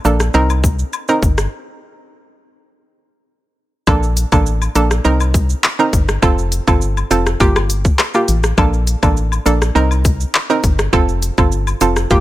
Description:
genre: dancehall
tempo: 102 BPM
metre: 4/4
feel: straight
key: Bb major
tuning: A4 = 440 Hz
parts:
  - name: hollow square pluck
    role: accompaniment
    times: 0.0-12.2 s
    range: Bb3 to Bb4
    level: -17 LUFS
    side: right 2 dB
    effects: chorus
  - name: organ-like FM bass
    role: bass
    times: 0.0-12.2 s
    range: F1 to C2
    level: -16 LUFS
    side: left 1 dB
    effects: none
  - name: island pop drum kit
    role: drums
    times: 0.0-12.2 s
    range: handclaps, hi-hat, kick drum, rim click, shaker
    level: -16 LUFS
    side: equal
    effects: overdrive, vintage 12-bit sampler grit
  - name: cabasa and woodblock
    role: percussion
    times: 0.1-12.0 s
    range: none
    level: -25 LUFS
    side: left 7 dB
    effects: none
room: digital ambience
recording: none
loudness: -13 LUFS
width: side -15 dB against mid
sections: 0.0-3.9 A section; 3.9-12.2 B section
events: break 1.5-3.9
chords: 0.3 Cm7; 1.5 N.C.; 3.9 Bbmaj7; 5.0 Cm7; 6.2 F; 7.4 Gm7; 8.6 Bbmaj7; 9.8 Cm7; 10.9 F

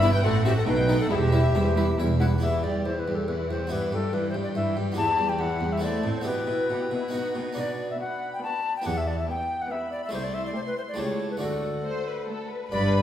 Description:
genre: classical, baroque-style concerto movement with solo episodes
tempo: 140 BPM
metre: 3/4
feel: straight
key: E minor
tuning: A4 = 440 Hz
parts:
  - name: alto recorder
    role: melody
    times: 0.0-13.0 s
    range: G4 to A5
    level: -28 LUFS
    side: left 2 dB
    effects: none
  - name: rich chamber violin section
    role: melody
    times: 0.0-13.0 s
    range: E5 to C6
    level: -37 LUFS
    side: left 4 dB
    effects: none
  - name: rich chamber violin section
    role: second line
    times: 0.0-13.0 s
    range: D#4 to C5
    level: -34 LUFS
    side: left 2 dB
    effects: none
  - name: harpsichord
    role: accompaniment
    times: 0.0-13.0 s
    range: C2 to E5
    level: -31 LUFS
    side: equal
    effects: none
  - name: warm studio viola section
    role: accompaniment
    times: 0.0-13.0 s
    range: E3 to E4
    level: -34 LUFS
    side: right 1 dB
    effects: none
  - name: clear chamber double bass section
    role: bass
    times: 0.0-2.4, 12.7-13.0 s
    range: E1 to B1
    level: -27 LUFS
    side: right 2 dB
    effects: none
  - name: rich chamber cello section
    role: bass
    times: 0.0-13.0 s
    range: C2 to B2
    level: -29 LUFS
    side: right 1 dB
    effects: none
room: wet recital hall reverb, RT60 1.6 s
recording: heard from further back in the room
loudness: -24 LUFS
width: side -10 dB against mid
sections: 0.0-2.4 A section; 2.4-12.7 B section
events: none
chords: 0.2 F#dim/A; 0.7 B7; 1.1 Em; 3.7 Em/G; 5.0 Em; 5.8 Am; 6.3 Em/B; 7.1 B; 7.6 Bm; 8.9 Em; 10.1 Am7/C; 11.0 A7/C#; 11.4 D

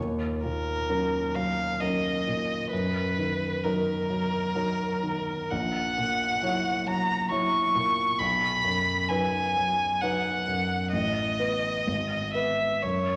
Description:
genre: classical, romantic duo for violin and grand piano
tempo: 66 BPM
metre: 3/4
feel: uneven beats, rubato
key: B major from 5.5 s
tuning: A4 = 439 Hz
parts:
  - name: warm grand piano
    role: accompaniment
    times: 0.0-13.2 s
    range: G#1 to C#5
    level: -31 LUFS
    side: equal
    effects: none
  - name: warm violin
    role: melody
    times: 0.4-13.2 s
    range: A#4 to C#6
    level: -29 LUFS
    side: equal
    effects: none
room: wet scoring stage reverb, RT60 1.8 s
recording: none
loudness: -27 LUFS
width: mono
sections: 0.0-13.2 A section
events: none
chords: 0.0 D#m7; 2.7 D#m/F#; 5.5 F#7/A#; 8.2 B; 10.9 B7/A; 11.9 E/G#

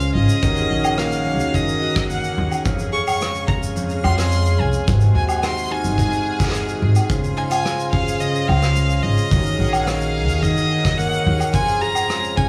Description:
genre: folktronica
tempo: 108 BPM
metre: 4/4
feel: straight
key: Db major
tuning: A4 = 440 Hz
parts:
  - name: rich violin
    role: melody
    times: 0.0-12.5 s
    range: Eb5 to Db6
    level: -26 LUFS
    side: equal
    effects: diffuse ambient delay
  - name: mellow accordion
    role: sustained chords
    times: 0.0-12.5 s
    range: C3 to F5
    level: -30 LUFS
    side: equal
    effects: none
  - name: picked plugged-in steel-string acoustic guitar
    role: arpeggios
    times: 0.0-12.5 s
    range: F2 to Ab4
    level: -27 LUFS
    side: equal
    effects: analog chorus, diffuse ambient delay
  - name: upright bass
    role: bass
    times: 0.0-11.4 s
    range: Ab1 to F2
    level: -21 LUFS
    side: equal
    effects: none
  - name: shaker, woodblock and rim click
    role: drums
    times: 0.0-12.3 s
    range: none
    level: -29 LUFS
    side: equal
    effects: none
  - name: backwards swelling texture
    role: texture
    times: 0.1-12.5 s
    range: Ab4 to F6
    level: -34 LUFS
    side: equal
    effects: built-in reverb
  - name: kick drum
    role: drums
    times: 0.4-12.5 s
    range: none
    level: -26 LUFS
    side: equal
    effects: none
room: light reverb, studio reverb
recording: studio ambience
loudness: -19 LUFS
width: mono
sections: 0.0-12.5 A section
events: none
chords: 0.4 Ebm7; 2.6 Dbmaj7/F; 4.9 Ab7; 7.1 Dbmaj7; 9.3 Ebm7; 11.5 Dbmaj7/F

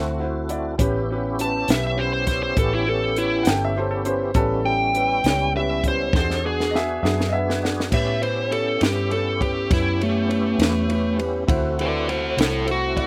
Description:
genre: slow blues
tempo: 67 BPM (dotted quarters)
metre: 12/8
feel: straight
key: A mixolydian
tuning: A4 = 444 Hz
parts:
  - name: warm baby grand piano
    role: accompaniment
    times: 0.0-13.1 s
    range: C#4 to D5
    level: -30 LUFS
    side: equal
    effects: slapback echo
  - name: tonewheel organ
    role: sustained chords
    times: 0.0-13.1 s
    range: G3 to A4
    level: -32 LUFS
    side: equal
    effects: slow rotary speaker, overdrive, chorus vibrato
  - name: vintage muted fingered electric bass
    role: bass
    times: 0.0-13.1 s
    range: G1 to A2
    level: -30 LUFS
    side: equal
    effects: none
  - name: compact cocktail drum kit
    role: drums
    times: 0.5-13.1 s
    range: crash cymbal, hi-hat, kick drum, ride cymbal, snare drum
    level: -25 LUFS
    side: equal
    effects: none
  - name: dark smooth lead guitar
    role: melody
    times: 1.4-13.1 s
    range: A3 to A5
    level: -25 LUFS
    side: equal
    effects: overdrive, slapback echo
  - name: bright upright piano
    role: second line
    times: 3.4-7.6 s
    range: G#4 to G5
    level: -28 LUFS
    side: equal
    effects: slapback echo
room: little or no reverb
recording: recorded outdoors, with no room sound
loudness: -22 LUFS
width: mono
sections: 0.0-7.9 A section; 7.9-13.1 B section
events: drum fill 6.1-7.9; lead electric guitar solo 7.9-13.1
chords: 0.0 D9; 0.8 A9; 6.1 E9; 7.9 A9; 11.5 D9

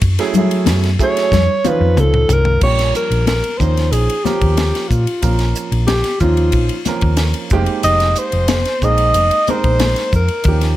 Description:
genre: electric jazz fusion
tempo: 92 BPM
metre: 4/4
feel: straight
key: Bb dorian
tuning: A4 = 440 Hz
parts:
  - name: hollow-body short-scale fingered electric bass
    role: bass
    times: 0.0-10.7 s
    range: F1 to F#3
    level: -16 LUFS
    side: equal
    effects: none
  - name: tight funk drum kit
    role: drums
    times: 0.0-10.8 s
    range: crash cymbal, hi-hat, kick drum, ride cymbal, snare drum, toms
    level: -20 LUFS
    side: equal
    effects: none
  - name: congas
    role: percussion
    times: 0.0-10.5 s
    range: none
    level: -22 LUFS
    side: left 8 dB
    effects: none
  - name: warm grand piano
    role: accompaniment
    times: 0.2-10.8 s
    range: F3 to Bb4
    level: -22 LUFS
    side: right 6 dB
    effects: plate reverb
  - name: dark alto saxophone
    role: melody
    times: 1.0-10.8 s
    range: F4 to Eb5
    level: -17 LUFS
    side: equal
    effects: plate reverb
room: moderate studio reverb, RT60 0.8 s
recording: none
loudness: -13 LUFS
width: side -14 dB against mid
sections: 0.0-2.6 A section; 2.6-10.8 B section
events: alto saxophone solo 0.0-2.6; drum fill 1.3-2.6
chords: 0.0 F#m9; 1.3 F5; 2.6 Bbm69; 7.5 Fm11

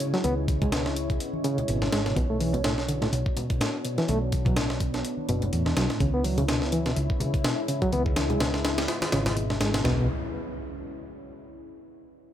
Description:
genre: breakbeat, breaks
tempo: 125 BPM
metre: 4/4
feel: swing 56% on 16ths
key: B dorian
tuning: A4 = 440 Hz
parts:
  - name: deep dark ambient pad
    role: sustained chords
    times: 0.0-10.1 s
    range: G#3 to C#5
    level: -32 LUFS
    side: equal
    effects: chorus, built-in reverb, sidechain pumping
  - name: overdriven reed electric piano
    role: riff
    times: 0.0-10.1 s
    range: A2 to B3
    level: -29 LUFS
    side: equal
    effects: fast tremolo, vintage 12-bit sampler grit, low-pass filter, digital delay
  - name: breakbeat sampler-style drum kit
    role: drums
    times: 0.0-10.0 s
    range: hi-hat, kick drum, snare drum, toms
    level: -28 LUFS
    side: equal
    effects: none
  - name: electronic hi-hat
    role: drums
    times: 0.0-9.8 s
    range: none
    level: -42 LUFS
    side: left 1 dB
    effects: none
  - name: hollow-body short-scale picked electric bass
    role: bass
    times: 0.2-10.1 s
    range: F#1 to E2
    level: -29 LUFS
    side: equal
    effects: none
  - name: congas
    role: percussion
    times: 0.2-9.6 s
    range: none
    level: -35 LUFS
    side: left 2 dB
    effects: none
  - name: impact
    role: sound effects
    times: 9.9-11.8 s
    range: none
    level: -36 LUFS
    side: equal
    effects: none
room: light reverb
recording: none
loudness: -24 LUFS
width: side -11 dB against mid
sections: 0.0-9.8 A section; 9.8-11.8 B section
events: filter sweep on reed electric piano 0.0-9.8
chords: 0.0 C#m; 2.2 Bmadd9; 6.0 C#m; 9.8 Bmadd9

